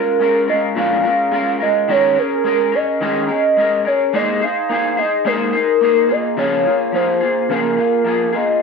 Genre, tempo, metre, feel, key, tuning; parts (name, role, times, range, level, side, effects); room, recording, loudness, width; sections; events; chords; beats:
indie pop; 107 BPM; 4/4; straight; A4 = 440 Hz
hollow clarinet-like synth lead; melody; 0.0-8.6 s; Bb4 to F5; -16 LUFS; right 1 dB; lush chorus, slapback echo
electric guitar through a small old amp; accompaniment; 0.0-8.6 s; Bb2 to C5; -19 LUFS; left 2 dB; analog chorus, vibrato effect
light reverb; dry, close 1970s-style studio recording; -14 LUFS; side -5 dB against mid
0.0-8.6 A section
0.0 Bbm7; 1.9 Eb7sus4; 4.1 Abadd9; 6.1 Db6
0.21 0.77 1.33 | 1.89 2.45 3.01 3.57 | 4.13 4.69 5.25 5.82 | 6.38 6.94 7.50 8.06 | 8.62